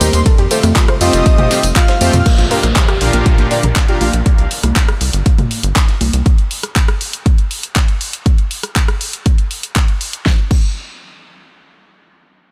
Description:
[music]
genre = progressive house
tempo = 120 BPM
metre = 4/4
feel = straight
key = C dorian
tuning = A4 = 440 Hz
[part]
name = soft octave-layered synth lead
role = melody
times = 0.0-2.2 s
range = C5 to F5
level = -25 LUFS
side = equal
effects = chorus, sidechain pumping, dub echo
[part]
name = soft supersaw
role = second line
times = 0.0-2.2 s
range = C6 to F6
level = -31 LUFS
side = equal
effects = none
[part]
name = lush unison pad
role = sustained chords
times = 0.0-2.2 s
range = Bb2 to G4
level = -29 LUFS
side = equal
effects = none
[part]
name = soft round pluck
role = arpeggios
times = 0.0-4.1 s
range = A3 to C5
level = -24 LUFS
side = equal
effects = ensemble chorus, sidechain pumping, dub echo
[part]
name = soft supersaw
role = stabs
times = 0.0-4.1 s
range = Bb2 to F5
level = -22 LUFS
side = equal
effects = cassette tape, sidechain pumping, dub echo
[part]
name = tight sequencer bass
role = bass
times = 0.0-6.2 s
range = F1 to F2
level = -18 LUFS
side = equal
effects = sidechain pumping
[part]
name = deep house drum kit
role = drums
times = 0.0-10.7 s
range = crash cymbal, handclaps, hi-hat, ride cymbal, rim click, snare drum, tambourine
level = -22 LUFS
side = equal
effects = none
[part]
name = dusty soul sampler-style drum kit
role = drums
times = 0.0-6.3 s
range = hi-hat, snare drum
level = -31 LUFS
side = equal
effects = none
[part]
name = electronic congas and toms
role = percussion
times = 0.0-6.1 s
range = none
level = -22 LUFS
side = equal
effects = sidechain pumping on perc, sidechain pumping on toms
[part]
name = electronic kick drum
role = drums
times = 0.3-10.7 s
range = none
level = -14 LUFS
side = equal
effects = none
[part]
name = downlifter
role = sound effects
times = 2.3-6.3 s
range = none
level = -28 LUFS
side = equal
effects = none
[sound]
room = little or no reverb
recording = none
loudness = -14 LUFS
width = mono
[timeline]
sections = 0.0-2.3 A section; 2.3-10.3 B section; 10.3-12.5 C section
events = drop 0.0-2.3; filter sweep on synth pluck 2.3-4.3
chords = 0.3 Fadd9; 2.3 Bb6; 4.3 C5; 6.3 N.C.

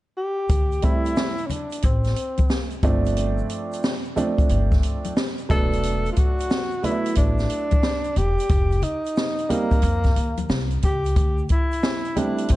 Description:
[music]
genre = hip hop, jazz-hop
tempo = 90 BPM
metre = 4/4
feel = swing 64% on 16ths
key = unclear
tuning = A4 = 440 Hz
[part]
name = breathy tenor saxophone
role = melody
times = 0.2-12.6 s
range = Bb3 to A4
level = -26 LUFS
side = left 1 dB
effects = none
[part]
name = upright bass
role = bass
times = 0.5-12.6 s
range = E1 to F2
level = -24 LUFS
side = equal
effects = none
[part]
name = open jazz drum kit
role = drums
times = 0.5-12.6 s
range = hi-hat, kick drum, snare drum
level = -22 LUFS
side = equal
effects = none
[part]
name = egg shaker and congas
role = percussion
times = 0.5-12.6 s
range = none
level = -34 LUFS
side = left 4 dB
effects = none
[part]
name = dark upright piano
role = accompaniment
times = 0.8-12.6 s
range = F3 to E4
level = -26 LUFS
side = right 4 dB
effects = none
[sound]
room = studio reverb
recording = dark, warm production, nothing above 10.5 kHz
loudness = -20 LUFS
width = side -16 dB against mid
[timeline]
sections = 0.5-12.6 A section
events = none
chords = 0.5 D9sus4; 2.8 G9sus4; 5.5 E9sus4; 8.5 F9sus4; 11.2 D9sus4

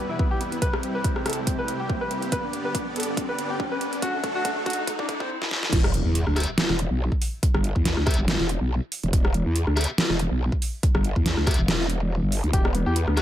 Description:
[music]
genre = heavy wobble dubstep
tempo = 141 BPM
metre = 4/4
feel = swing 54% on 16ths, half-time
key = E minor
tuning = A4 = 437 Hz
[part]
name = clear concert grand piano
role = melody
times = 0.0-5.3, 12.5-13.2 s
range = A3 to B4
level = -28 LUFS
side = left 1 dB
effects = ping-pong delay
[part]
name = supersaw chords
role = sustained chords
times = 0.0-5.3 s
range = C2 to D5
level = -33 LUFS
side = right 1 dB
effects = sidechain pumping
[part]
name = riser and impact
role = sound effects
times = 0.8-7.4 s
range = none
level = -33 LUFS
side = equal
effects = none
[part]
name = electronic kick drum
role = drums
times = 0.2-12.6 s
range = none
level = -24 LUFS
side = equal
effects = overdrive
[part]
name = dubstep drum kit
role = drums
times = 0.4-13.2 s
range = crash cymbal, hi-hat, rim click, snare drum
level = -26 LUFS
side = equal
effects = none
[part]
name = growl bass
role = bass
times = 5.7-13.2 s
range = E1 to E2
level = -23 LUFS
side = equal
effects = chorus, overdrive
[part]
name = distorted electric guitar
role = stabs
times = 6.4-13.2 s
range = B3 to E5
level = -33 LUFS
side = left 3 dB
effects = overdrive, ping-pong delay
[sound]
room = light reverb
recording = dark, warm production, high-pass filter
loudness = -22 LUFS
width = side -12 dB against mid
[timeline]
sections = 0.0-5.7 A section; 5.7-13.2 B section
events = build-up 0.0-5.7; filter sweep 0.0-5.7; riser 0.8-5.3; drum fill 2.3-5.3, 5.4-5.7; drop 5.7-13.2; impact 5.7-7.4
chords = 0.0 Em; 0.6 C; 2.3 G; 4.0 D; 5.7 Em

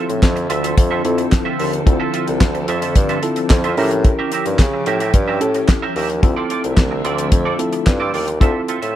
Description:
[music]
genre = early-eighties boogie funk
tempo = 110 BPM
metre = 4/4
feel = straight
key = D minor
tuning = A4 = 439 Hz
[part]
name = tine electric piano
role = accompaniment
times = 0.0-8.8 s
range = C4 to Bb4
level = -22 LUFS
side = left 2 dB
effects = auto-pan
[part]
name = soft string machine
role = sustained chords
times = 0.0-8.4 s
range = D3 to E5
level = -25 LUFS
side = left 1 dB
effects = ensemble chorus
[part]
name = semi-hollow electric guitar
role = riff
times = 0.0-9.0 s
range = C4 to E5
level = -24 LUFS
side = right 6 dB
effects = ensemble chorus
[part]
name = warm bassoon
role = bass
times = 0.1-8.9 s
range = C2 to C#3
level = -21 LUFS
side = equal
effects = none
[part]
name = damped 70s drum kit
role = drums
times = 0.1-8.9 s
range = handclaps, hi-hat, kick drum, snare drum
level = -16 LUFS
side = equal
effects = none
[sound]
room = studio reverb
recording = dark, warm production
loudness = -14 LUFS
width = side -12 dB against mid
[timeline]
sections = 0.0-8.4 A section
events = none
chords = 0.0 Dm9; 3.8 A7b9; 6.2 Dm9

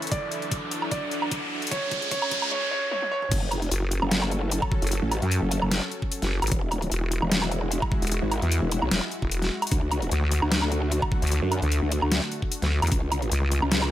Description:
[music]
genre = heavy wobble dubstep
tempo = 150 BPM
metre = 4/4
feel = swing 54% on 16ths, half-time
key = F# minor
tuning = A4 = 440 Hz
[part]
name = warm concert grand piano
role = melody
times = 0.0-3.3 s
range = C#5 to D5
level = -30 LUFS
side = right 2 dB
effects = digital delay
[part]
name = supersaw pad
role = sustained chords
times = 0.0-13.9 s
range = E2 to A4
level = -34 LUFS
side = equal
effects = sidechain pumping
[part]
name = dubstep drum kit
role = drums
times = 0.0-13.9 s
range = crash cymbal, hi-hat, snare drum, toms, woodblock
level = -28 LUFS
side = equal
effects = overdrive, studio reverb
[part]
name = riser and noise sweep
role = sound effects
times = 0.0-3.3 s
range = none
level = -30 LUFS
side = right 1 dB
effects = none
[part]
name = airy breathy pad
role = texture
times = 0.0-2.5 s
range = C#4 to C#6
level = -36 LUFS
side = equal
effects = chorus, sidechain pumping
[part]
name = electronic kick drum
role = drums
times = 0.1-13.0 s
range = none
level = -27 LUFS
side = equal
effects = overdrive, studio reverb
[part]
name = growl bass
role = bass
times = 3.3-13.9 s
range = E1 to F#2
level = -26 LUFS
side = equal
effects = chorus, overdrive
[part]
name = vowel-sweep wobble bass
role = bass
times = 3.7-13.6 s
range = E1 to F#2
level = -24 LUFS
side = equal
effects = chorus, overdrive
[sound]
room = little or no reverb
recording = high-pass filter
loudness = -23 LUFS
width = side -13 dB against mid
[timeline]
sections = 0.0-3.3 A section; 3.3-13.9 B section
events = build-up 0.0-3.3; riser 0.0-2.5; drum fill 0.1-2.5, 2.9-3.3; noise sweep 1.7-3.3; drop 3.3-13.9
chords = 0.1 Dadd9; 1.7 C#; 3.3 F#m; 6.5 Eadd9; 9.7 D; 12.9 C#

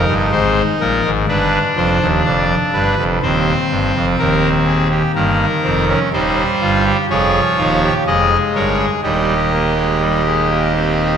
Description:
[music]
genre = classical, baroque-style 4-part fugue for pipe organ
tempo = 62 BPM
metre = 4/4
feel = straight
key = C minor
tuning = A4 = 440 Hz
[part]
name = pipe organ, trumpet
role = solo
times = 0.0-11.2 s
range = Eb1 to Eb5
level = -13 LUFS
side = equal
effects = none
[sound]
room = wet church reverb, RT60 2.8 s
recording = nothing above 10.6 kHz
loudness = -13 LUFS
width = side -8 dB against mid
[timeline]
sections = 0.0-5.2 A section; 5.2-11.2 B section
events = none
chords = 0.0 Fm (rootless); 1.3 G7; 3.2 Cm/Eb; 5.2 Eb; 7.1 Db; 9.0 Eb

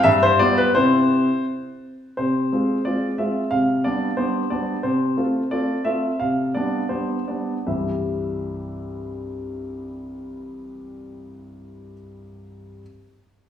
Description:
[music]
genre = classical-period piano sonatina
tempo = 77-91 BPM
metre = 2/4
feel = rubato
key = C major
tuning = A4 = 441 Hz
[part]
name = warm grand piano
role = solo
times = 0.0-12.8 s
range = C2 to F5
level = -20 LUFS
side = equal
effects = none
[sound]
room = wet recital hall reverb, RT60 1.4 s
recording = recorded in a church or concert hall, small room ambience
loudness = -20 LUFS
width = side -9 dB against mid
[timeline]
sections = 0.0-2.2 A section; 2.2-7.7 B section; 7.7-10.6 C section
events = slowing down 4.2-7.7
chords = 0.1 G7; 0.8 C; 2.2 Fm/C; 3.5 G/C; 4.8 F/C; 6.2 G/C; 7.7 C

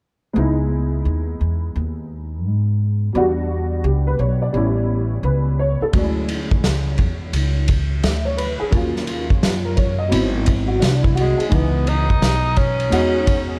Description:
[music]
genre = hip hop, jazz-hop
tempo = 86 BPM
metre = 4/4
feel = swing 64% on 16ths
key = unclear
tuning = A4 = 440 Hz
[part]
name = dark upright piano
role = accompaniment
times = 0.3-13.6 s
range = E3 to E5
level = -24 LUFS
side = equal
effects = analog chorus
[part]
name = upright bass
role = bass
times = 0.4-13.6 s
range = G#1 to G#2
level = -23 LUFS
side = equal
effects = none
[part]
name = vintage drum kit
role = drums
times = 5.9-13.5 s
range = hi-hat, kick drum, ride cymbal, snare drum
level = -22 LUFS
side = equal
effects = none
[part]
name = breathy tenor saxophone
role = melody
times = 11.2-13.6 s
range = G#3 to D#4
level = -24 LUFS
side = equal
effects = delay
[sound]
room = light reverb, studio ambience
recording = none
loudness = -19 LUFS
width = mono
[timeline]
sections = 0.4-11.5 A section; 11.5-13.6 B section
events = none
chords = 0.4 C#m9; 3.1 Em7; 4.5 A7; 5.9 Dmaj9#11; 8.7 D#m7; 10.1 G#7alt; 11.5 C#m9

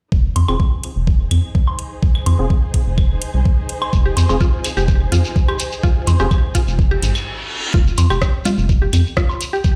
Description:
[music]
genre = minimal techno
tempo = 126 BPM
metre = 4/4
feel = straight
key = F minor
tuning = A4 = 440 Hz
[part]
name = rubbery square bass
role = bass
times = 0.1-9.0 s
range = F1 to F2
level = -18 LUFS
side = equal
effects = tube saturation, sidechain pumping
[part]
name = electronic kick drum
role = drums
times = 0.1-9.7 s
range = none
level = -17 LUFS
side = equal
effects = none
[part]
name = dark symphonic string section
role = texture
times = 0.1-7.3 s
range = Eb4 to C5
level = -33 LUFS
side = equal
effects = sidechain pumping
[part]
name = garage drum kit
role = drums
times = 0.4-9.5 s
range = hi-hat, rim click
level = -26 LUFS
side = equal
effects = none
[part]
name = woodblock, claves and congas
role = percussion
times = 0.4-9.4 s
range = none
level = -27 LUFS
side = equal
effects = digital delay
[part]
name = percussive organ stab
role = stabs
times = 0.5-6.3 s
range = C4 to Ab4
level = -27 LUFS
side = equal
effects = ensemble chorus, digital delay
[part]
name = shekere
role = percussion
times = 3.9-9.7 s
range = none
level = -31 LUFS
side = equal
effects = none
[part]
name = mallet-like synth pluck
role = riff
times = 4.1-9.6 s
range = F4 to G4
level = -28 LUFS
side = equal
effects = chorus, sidechain pumping, delay
[part]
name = reverse cymbal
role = sound effects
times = 7.0-7.7 s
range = none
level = -27 LUFS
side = equal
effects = none
[sound]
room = little or no reverb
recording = played on a big sound system in a bare room, stone room reverb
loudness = -17 LUFS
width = mono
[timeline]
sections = 0.1-7.7 A section; 7.7-9.8 B section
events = fade-in on string section 0.1-7.7; filter sweep on synth stab 0.1-7.7; reverse cymbal 7.0-7.7; stop 7.3-7.7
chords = 0.1 Fm; 7.7 N.C.

